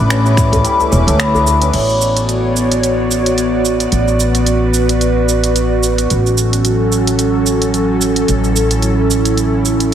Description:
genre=organic downtempo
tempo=110 BPM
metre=4/4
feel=swing 56% on 16ths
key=unclear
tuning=A4 = 439 Hz
part: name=airy breathy pad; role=sustained chords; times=0.0-9.9 s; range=F#3 to D6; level=-15 LUFS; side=right 1 dB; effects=chorus, sidechain pumping
part: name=santur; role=arpeggios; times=0.0-5.9 s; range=E3 to A4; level=-17 LUFS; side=left 2 dB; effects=digital delay
part: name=upright bass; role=bass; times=0.0-9.9 s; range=E1 to D2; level=-16 LUFS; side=equal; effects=none
part: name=organic electronic drum kit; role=drums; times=0.1-9.9 s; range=crash cymbal, finger snaps, hi-hat, shaker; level=-20 LUFS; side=right 3 dB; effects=studio reverb
part: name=electronic kick drum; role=drums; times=0.4-0.6 s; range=none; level=-15 LUFS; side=equal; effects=studio reverb
part: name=djembe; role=percussion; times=0.5-1.7 s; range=none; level=-22 LUFS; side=left 1 dB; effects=none
room=moderate echo chamber reverb, RT60 2.1 s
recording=heavily compressed radio sound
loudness=-11 LUFS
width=side -9 dB against mid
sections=0.0-1.7 A section; 1.7-9.9 B section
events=none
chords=0.0 A7sus4; 1.7 Bm7/A; 6.1 F#m7/A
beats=0.10 0.65 1.19 | 1.74 2.28 2.83 3.38 | 3.92 4.47 5.01 5.56 | 6.10 6.65 7.19 7.74 | 8.28 8.83 9.38 9.92

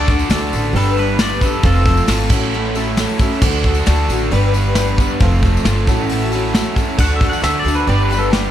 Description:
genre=folk rock and heartland rock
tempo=134 BPM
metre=4/4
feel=straight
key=D major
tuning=A4 = 440 Hz
part: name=pedal steel guitar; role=second line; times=0.0-2.1, 7.0-8.5 s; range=G4 to F#5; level=-21 LUFS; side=equal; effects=none
part: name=picked twelve-string acoustic guitar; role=accompaniment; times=0.0-8.5 s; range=A2 to B4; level=-24 LUFS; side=left 6 dB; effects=analog chorus
part: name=reed electric piano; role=accompaniment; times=0.0-8.5 s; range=A4 to A5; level=-29 LUFS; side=right 9 dB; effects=fast tremolo
part: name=crunchy overdriven guitar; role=riff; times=0.0-8.5 s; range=A2 to B4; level=-20 LUFS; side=right 2 dB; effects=none
part: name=upright bass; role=bass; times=0.0-8.5 s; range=F1 to D2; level=-18 LUFS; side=equal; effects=none
part: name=soft brush drum kit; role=drums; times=0.1-8.4 s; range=crash cymbal, hi-hat, kick drum, snare drum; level=-18 LUFS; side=equal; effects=none
part: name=tambourine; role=percussion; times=0.1-8.5 s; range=none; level=-34 LUFS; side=left 14 dB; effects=none
room=small room ambience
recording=none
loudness=-13 LUFS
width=side -11 dB against mid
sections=0.0-8.5 A section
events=reed electric piano fill 5.7-7.0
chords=0.0 D; 0.8 G; 1.6 F; 2.3 A6; 3.4 D; 4.3 G; 5.2 F; 5.9 A6; 7.0 D; 7.9 G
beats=0.30 0.75 1.20 | 1.64 2.09 2.53 2.98 | 3.43 3.87 4.32 4.77 | 5.21 5.66 6.11 6.55 | 7.00 7.44 7.89 8.34

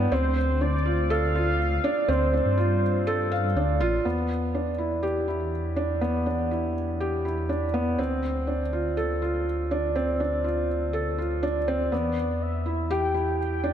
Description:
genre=piano and strings electronica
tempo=122 BPM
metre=4/4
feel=straight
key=unclear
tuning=A4 = 439 Hz
part: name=felt-muted upright piano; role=riff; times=0.0-13.7 s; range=B3 to F5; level=-26 LUFS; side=right 1 dB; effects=tape echo
part: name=dark detuned saw bass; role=bass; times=0.0-13.7 s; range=A1 to G2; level=-28 LUFS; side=equal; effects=none
part: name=warm velvety synth lead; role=melody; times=0.1-3.6, 11.9-13.7 s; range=C5 to G5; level=-30 LUFS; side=left 1 dB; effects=chorus, tape echo
room=moderate lush hall reverb, RT60 2.6 s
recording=none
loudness=-23 LUFS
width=side -9 dB against mid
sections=0.0-4.1 A section; 4.1-13.7 B section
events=none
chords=0.1 Dm7; 4.1 Em7; 8.0 Dm7; 11.9 Em7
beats=| 0.12 0.61 1.10 1.59 | 2.08 2.58 3.07 3.56 | 4.05 4.54 5.03 5.53 | 6.02 6.51 7.00 7.49 | 7.99 8.48 8.97 9.46 | 9.95 10.44 10.94 11.43 | 11.92 12.41 12.90 13.39

